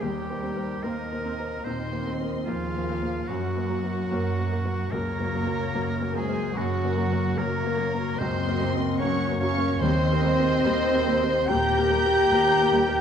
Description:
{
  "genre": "cinematic",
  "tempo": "73 BPM",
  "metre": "4/4",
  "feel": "rubato",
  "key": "unclear",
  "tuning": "A4 = 440 Hz",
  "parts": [
    { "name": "muted symphonic violin section", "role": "melody", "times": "0.0-13.0 s", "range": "F5 to G6", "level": "-34 LUFS", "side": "equal", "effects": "none" },
    { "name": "bright oboe", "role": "second line", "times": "0.0-13.0 s", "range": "F4 to G5", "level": "-33 LUFS", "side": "right 2 dB", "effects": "none" },
    { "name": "muted symphonic violin section", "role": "second line", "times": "0.0-13.0 s", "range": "Ab4 to Bb5", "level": "-36 LUFS", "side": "left 1 dB", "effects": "none" },
    { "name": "warm clarinet", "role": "second line", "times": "0.0-13.0 s", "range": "F4 to G5", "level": "-32 LUFS", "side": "equal", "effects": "none" },
    { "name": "felt-muted upright piano", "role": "accompaniment", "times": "0.0-13.0 s", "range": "Db2 to C5", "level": "-32 LUFS", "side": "left 2 dB", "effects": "none" },
    { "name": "muted symphonic viola section", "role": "accompaniment", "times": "0.0-12.8 s", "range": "Gb3 to C4", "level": "-36 LUFS", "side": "right 2 dB", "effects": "none" },
    { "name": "dark French horn section", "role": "sustained chords", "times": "0.0-13.0 s", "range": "F3 to G4", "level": "-29 LUFS", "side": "left 3 dB", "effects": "none" },
    { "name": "concert harp", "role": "arpeggios", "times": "0.0-13.0 s", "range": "Gb2 to G5", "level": "-35 LUFS", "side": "left 9 dB", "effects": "none" },
    { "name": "muted symphonic cello section", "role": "bass", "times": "0.0-13.0 s", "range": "F3 to G4", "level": "-33 LUFS", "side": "right 3 dB", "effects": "none" },
    { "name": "muted symphonic double bass section", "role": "bass", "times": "0.0-13.0 s", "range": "Eb2 to Gb2", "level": "-31 LUFS", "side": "right 4 dB", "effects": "none" },
    { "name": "timpani", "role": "percussion", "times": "9.8-11.0 s", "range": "Eb3", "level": "-27 LUFS", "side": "equal", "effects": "none" }
  ],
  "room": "moderate scoring stage reverb, RT60 1.5 s",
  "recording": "dark, warm production",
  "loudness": "-22 LUFS",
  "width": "side -8 dB against mid",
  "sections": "0.0-13.0 A section",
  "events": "none",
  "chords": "0.0 Eb6; 3.3 Gb; 9.8 Eb6"
}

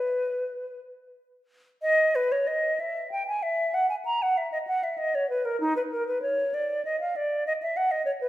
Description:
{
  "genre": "classical, baroque-style fantasia for unaccompanied flute",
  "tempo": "64 BPM (dotted quarters)",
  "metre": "6/8",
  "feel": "uneven beats, rubato",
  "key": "unclear",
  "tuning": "A4 = 444 Hz",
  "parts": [
    { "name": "hollow concert flute", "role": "solo", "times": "0.0-8.3 s", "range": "D#4 to A#5", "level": "-24 LUFS", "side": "equal", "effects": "none" }
  ],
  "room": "wet recital hall reverb, RT60 1.8 s",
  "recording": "recorded in a church or concert hall",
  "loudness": "-24 LUFS",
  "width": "side -15 dB against mid",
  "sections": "0.0-1.8 A section; 1.8-8.3 A section",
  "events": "none",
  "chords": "none"
}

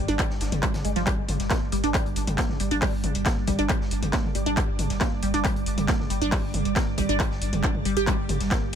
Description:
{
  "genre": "driving peak-time techno",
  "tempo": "137 BPM",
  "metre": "4/4",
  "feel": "straight",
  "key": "unclear",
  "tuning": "A4 = 443 Hz",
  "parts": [
    { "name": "saturated sub bass", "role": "bass", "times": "0.0-8.8 s", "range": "G1", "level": "-30 LUFS", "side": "equal", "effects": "tube saturation, sidechain pumping, low-pass filter" },
    { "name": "swarming drone", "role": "drone", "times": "0.0-8.8 s", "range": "G2 to G3", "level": "-32 LUFS", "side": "right 4 dB", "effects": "built-in reverb, sidechain pumping" },
    { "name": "resonant blip pluck", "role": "riff", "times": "0.1-8.6 s", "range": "F3 to G4", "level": "-28 LUFS", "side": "right 1 dB", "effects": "phaser, wide subtle chorus, sidechain pumping, dub echo" },
    { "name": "techno drum kit", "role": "drums", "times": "0.1-8.8 s", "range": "handclaps, hi-hat, toms", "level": "-29 LUFS", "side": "left 1 dB", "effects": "sidechain pumping on hats, sidechain pumping on toms" },
    { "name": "electronic kick drum", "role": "drums", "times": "0.2-8.6 s", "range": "none", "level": "-27 LUFS", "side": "equal", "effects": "none" },
    { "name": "street-band drum kit", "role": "drums", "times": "0.2-8.8 s", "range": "hi-hat, snare drum", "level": "-42 LUFS", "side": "equal", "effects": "sidechain pumping on hats, high-pass filter on hats, high-pass filter on snare, high-pass filter on room" }
  ],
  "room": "little or no reverb",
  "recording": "none",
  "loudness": "-22 LUFS",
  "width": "side -8 dB against mid",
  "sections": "0.0-8.8 A section",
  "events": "none",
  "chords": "0.0 G5"
}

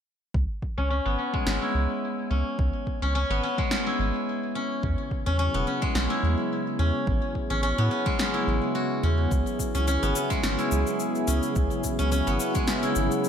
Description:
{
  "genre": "organic downtempo",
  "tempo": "107 BPM",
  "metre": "4/4",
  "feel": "swing 54% on 16ths",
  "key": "C# minor pentatonic",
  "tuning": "A4 = 440 Hz",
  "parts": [
    { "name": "round analog bass", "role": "bass", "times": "0.3-13.1 s", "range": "E1 to A2", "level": "-26 LUFS", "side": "equal", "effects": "tube saturation, sidechain pumping" },
    { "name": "electronic kick drum", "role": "drums", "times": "0.3-12.7 s", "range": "none", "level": "-29 LUFS", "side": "equal", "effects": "overdrive" },
    { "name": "steel-string zither", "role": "arpeggios", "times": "0.8-13.3 s", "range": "G#3 to F#4", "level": "-27 LUFS", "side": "left 1 dB", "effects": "low-pass filter, ping-pong delay" },
    { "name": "electronic snare drum and cabasa", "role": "drums", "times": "1.5-13.3 s", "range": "none", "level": "-32 LUFS", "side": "equal", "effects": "overdrive, gated reverb" },
    { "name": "warm analog pad", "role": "sustained chords", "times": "4.8-13.3 s", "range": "C#3 to G#4", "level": "-30 LUFS", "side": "equal", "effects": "chorus, tremolo, sidechain pumping" }
  ],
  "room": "moderate plate reverb, RT60 2.3 s",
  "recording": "bright 1980s-style digital production",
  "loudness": "-24 LUFS",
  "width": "side -8 dB against mid",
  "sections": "0.3-9.3 A section; 9.3-13.3 B section",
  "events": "none",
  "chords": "0.3 C#m7; 4.8 E; 7.1 Amaj9; 9.3 C#m7"
}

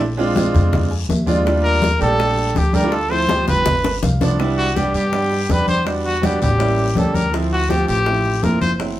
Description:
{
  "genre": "Afro-Cuban jazz",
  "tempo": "164 BPM",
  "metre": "4/4",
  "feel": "straight",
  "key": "unclear",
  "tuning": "A4 = 440 Hz",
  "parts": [
    { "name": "upright bass", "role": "bass", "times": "0.0-9.0 s", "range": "F#1 to G2", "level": "-21 LUFS", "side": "equal", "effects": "none" },
    { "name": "congas", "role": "percussion", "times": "0.0-9.0 s", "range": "none", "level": "-23 LUFS", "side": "left 1 dB", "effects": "none" },
    { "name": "guiro", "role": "percussion", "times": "0.0-9.0 s", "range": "none", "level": "-35 LUFS", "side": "left 5 dB", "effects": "none" },
    { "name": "bright grand piano", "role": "accompaniment", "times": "0.2-9.0 s", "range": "F3 to Ab5", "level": "-21 LUFS", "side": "right 2 dB", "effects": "none" },
    { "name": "bongos", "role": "percussion", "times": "0.2-9.0 s", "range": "none", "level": "-27 LUFS", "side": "left 4 dB", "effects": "none" },
    { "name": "bright trumpet", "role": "melody", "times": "1.6-8.7 s", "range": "F#4 to C5", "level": "-20 LUFS", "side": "equal", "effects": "none" }
  ],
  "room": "wet studio reverb, RT60 0.6 s",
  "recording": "band playing live in one room",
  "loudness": "-15 LUFS",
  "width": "side -14 dB against mid",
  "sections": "0.0-4.4 A section; 4.4-9.0 B section",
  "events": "grand piano fill 0.7-1.5, 3.8-4.4; drum fill 3.3-4.4; trumpet solo 4.4-9.0",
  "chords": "0.0 Bb7; 1.5 Ebmaj9#11; 2.9 Dm9; 3.7 G7; 4.4 Cmaj7; 5.9 Em7; 6.6 A7b9; 7.3 Dm7"
}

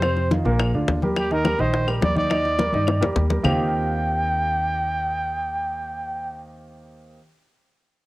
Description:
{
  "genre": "Afro-Cuban jazz",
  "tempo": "211 BPM",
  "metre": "4/4",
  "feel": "straight",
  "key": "Eb major",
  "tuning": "A4 = 440 Hz",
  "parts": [
    { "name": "breathy trumpet", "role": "melody", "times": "0.0-6.5 s", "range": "G4 to G5", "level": "-25 LUFS", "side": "right 1 dB", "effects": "cassette tape, plate reverb" },
    { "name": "warm baby grand piano", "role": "accompaniment", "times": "0.0-7.2 s", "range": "Bb2 to Eb5", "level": "-26 LUFS", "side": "right 1 dB", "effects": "cassette tape, plate reverb" },
    { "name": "upright bass", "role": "bass", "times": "0.0-7.2 s", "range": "Bb1 to G2", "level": "-26 LUFS", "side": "equal", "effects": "none" },
    { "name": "bongos", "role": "percussion", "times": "0.0-3.5 s", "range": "none", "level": "-26 LUFS", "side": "left 4 dB", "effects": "none" },
    { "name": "claves", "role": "percussion", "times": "0.0-3.5 s", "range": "none", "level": "-32 LUFS", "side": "left 4 dB", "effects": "none" },
    { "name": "congas", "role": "percussion", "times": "0.0-3.5 s", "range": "none", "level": "-27 LUFS", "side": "left 1 dB", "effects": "none" }
  ],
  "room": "moderate booth ambience, RT60 0.2 s",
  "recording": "home recording on cassette",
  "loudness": "-20 LUFS",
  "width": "side -18 dB against mid",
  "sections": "0.0-3.4 A section; 3.4-5.7 B section",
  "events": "drum fill 2.9-3.4",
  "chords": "0.0 F5; 0.6 Bb; 1.2 Eb; 3.4 Eb69"
}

